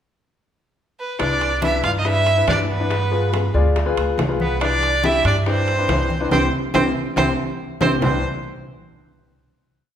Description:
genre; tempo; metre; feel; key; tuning
Afro-Cuban jazz; 140 BPM; 4/4; straight; C major; A4 = 440 Hz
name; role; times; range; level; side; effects
clear violin; melody; 1.0-8.2 s; B4 to F5; -22 LUFS; right 2 dB; none
bright tenor saxophone; second line; 1.2-8.2 s; B3 to F4; -27 LUFS; right 3 dB; none
warm upright piano; accompaniment; 1.2-8.2 s; C4 to D5; -24 LUFS; left 5 dB; none
upright bass; bass; 1.2-8.2 s; C2 to G2; -22 LUFS; right 1 dB; none
bongos; percussion; 1.2-8.1 s; none; -30 LUFS; left 5 dB; none
congas; percussion; 1.2-8.1 s; none; -29 LUFS; left 1 dB; none
timbales; percussion; 1.2-8.1 s; none; -28 LUFS; right 5 dB; none
room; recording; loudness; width
wet recital hall reverb, RT60 1.5 s; recorded in a church or concert hall; -17 LUFS; side -9 dB against mid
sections
0.0-1.2 pickup bar; 1.2-8.0 A section; 8.0-9.7 final chord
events
band accent 6.3-8.0; drum fill 7.6-8.0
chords
0.0 N.C.; 1.2 Cmaj9; 2.9 G7b9; 4.6 Cmaj9

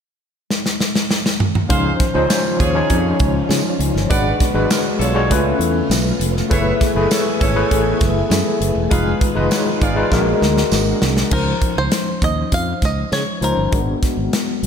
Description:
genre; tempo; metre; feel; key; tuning
polished 1980s jazz-funk pop; 100 BPM; 4/4; straight; unclear; A4 = 442 Hz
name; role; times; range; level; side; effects
modern studio drum kit; drums; 0.5-14.7 s; crash cymbal, hi-hat, kick drum, snare drum, toms; -19 LUFS; equal; none
warm horn section; second line; 1.7-10.4 s; Db4 to Gb5; -25 LUFS; right 3 dB; slapback echo
overdriven tine electric piano; accompaniment; 1.7-14.7 s; F3 to Db5; -19 LUFS; left 2 dB; fast tremolo, analog chorus, slapback echo
phased string machine; sustained chords; 2.4-11.3 s; Db3 to Ab5; -27 LUFS; right 1 dB; ensemble chorus, phaser
fretless electric bass; bass; 1.7-14.7 s; Fb1 to Db3; -20 LUFS; right 1 dB; lush chorus
tambourine; percussion; 2.3-10.9 s; none; -31 LUFS; right 8 dB; none
bluegrass banjo; melody; 11.3-14.6 s; Bb4 to F5; -23 LUFS; right 2 dB; slapback echo, ping-pong delay
room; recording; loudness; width
moderate lush hall reverb, RT60 2.0 s; big arena sound; -15 LUFS; side -7 dB against mid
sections
0.0-1.7 A section; 1.7-11.3 B section; 11.3-14.7 C section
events
drum fill 0.5-1.7, 10.1-11.3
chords
0.0 N.C.; 1.7 Dbmaj9; 4.1 Abm7b5; 5.3 Db7alt; 6.5 Gbm11; 8.9 Fm7b5; 10.1 Bb7b13; 11.3 Dbmaj9; 13.7 Abm7b5

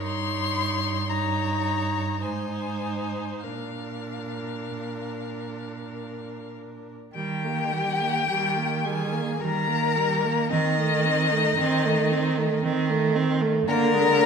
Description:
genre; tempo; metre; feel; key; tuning
classical, slow romantic movement for string quartet; 48-58 BPM; 3/4; rubato; Eb major; A4 = 440 Hz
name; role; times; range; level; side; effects
rich violin; melody; 0.0-14.3 s; Eb5 to C6; -28 LUFS; left 6 dB; none
rich violin; second line; 0.0-14.3 s; Eb4 to Db5; -31 LUFS; left 6 dB; none
warm viola; accompaniment; 0.0-14.3 s; G3 to Eb4; -29 LUFS; right 3 dB; none
rich cello; bass; 0.0-14.3 s; G2 to Eb3; -28 LUFS; right 5 dB; none
room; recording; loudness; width
wet recital hall reverb, RT60 1.3 s; none; -23 LUFS; side -6 dB against mid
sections
0.0-7.2 A section; 7.2-14.3 B section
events
none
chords
0.0 Eb7/G; 2.2 Ab; 3.4 Bb; 7.2 Eb; 10.5 Adim/Eb; 13.7 Bb7/D

